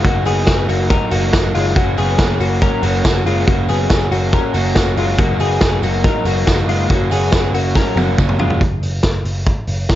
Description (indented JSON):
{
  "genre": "jangly indie pop",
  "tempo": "140 BPM",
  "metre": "4/4",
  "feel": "straight",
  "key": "F# major",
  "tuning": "A4 = 439 Hz",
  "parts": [
    { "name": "crunchy overdriven guitar", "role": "accompaniment", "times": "0.0-8.6 s", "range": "F#2 to F#4", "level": "-21 LUFS", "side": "right 5 dB", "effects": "none" },
    { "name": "direct-recorded clean electric guitar", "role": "arpeggios", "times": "0.0-8.6 s", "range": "G#3 to A#4", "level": "-20 LUFS", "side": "left 6 dB", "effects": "analog chorus, tape echo" },
    { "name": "vintage muted picked electric bass", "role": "bass", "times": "0.0-10.0 s", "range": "F#1", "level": "-19 LUFS", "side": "equal", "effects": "none" },
    { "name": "vintage drum kit", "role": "drums", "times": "0.0-10.0 s", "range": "hi-hat, kick drum, snare drum, toms", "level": "-17 LUFS", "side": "equal", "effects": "none" },
    { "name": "tambourine", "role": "percussion", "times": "0.0-8.3 s", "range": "none", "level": "-37 LUFS", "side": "right 15 dB", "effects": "none" }
  ],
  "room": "light reverb, small room ambience",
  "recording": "nothing above 7.6 kHz",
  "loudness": "-13 LUFS",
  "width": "side -13 dB against mid",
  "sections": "0.0-8.6 A section; 8.6-10.0 B section",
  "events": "drum fill 7.8-8.6",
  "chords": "0.0 D#m/F#; 1.8 F#; 5.2 D#m/F#; 6.9 F#; 8.6 N.C."
}